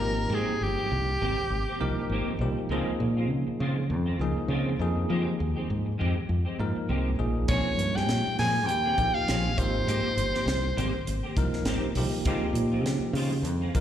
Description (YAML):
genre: electric jazz fusion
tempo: 100 BPM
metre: 4/4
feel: swing 55% on 16ths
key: unclear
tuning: A4 = 441 Hz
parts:
  - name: breathy soprano saxophone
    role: melody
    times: 0.0-2.4, 7.5-11.4 s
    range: G4 to Ab5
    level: -29 LUFS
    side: equal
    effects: slapback echo, tape echo
  - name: vintage hollow-body jazz guitar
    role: second line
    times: 0.0-2.4, 7.5-11.4 s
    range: G3 to Ab4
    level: -40 LUFS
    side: left 4 dB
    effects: none
  - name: bell-like tine electric piano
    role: accompaniment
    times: 0.0-13.8 s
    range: F3 to Bb4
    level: -31 LUFS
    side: right 1 dB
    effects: fast stereo tremolo
  - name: clean electric guitar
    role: stabs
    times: 0.0-13.8 s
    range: Eb3 to Ab4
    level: -35 LUFS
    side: left 1 dB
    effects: ensemble chorus, slapback echo
  - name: fingered electric bass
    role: bass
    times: 0.0-13.8 s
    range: G1 to F3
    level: -28 LUFS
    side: equal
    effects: none
  - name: crisp fusion drum kit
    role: drums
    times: 7.5-13.8 s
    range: hi-hat, kick drum, snare drum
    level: -32 LUFS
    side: equal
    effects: none
room: light reverb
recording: live gig heard through the venue's PA, recital hall reverb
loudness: -25 LUFS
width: side -10 dB against mid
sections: 0.0-13.8 A section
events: none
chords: 0.0 Abmaj9; 2.7 Dbmaj9; 4.8 Fm9; 7.5 Bbm9; 9.6 Abmaj9; 12.3 Dbmaj9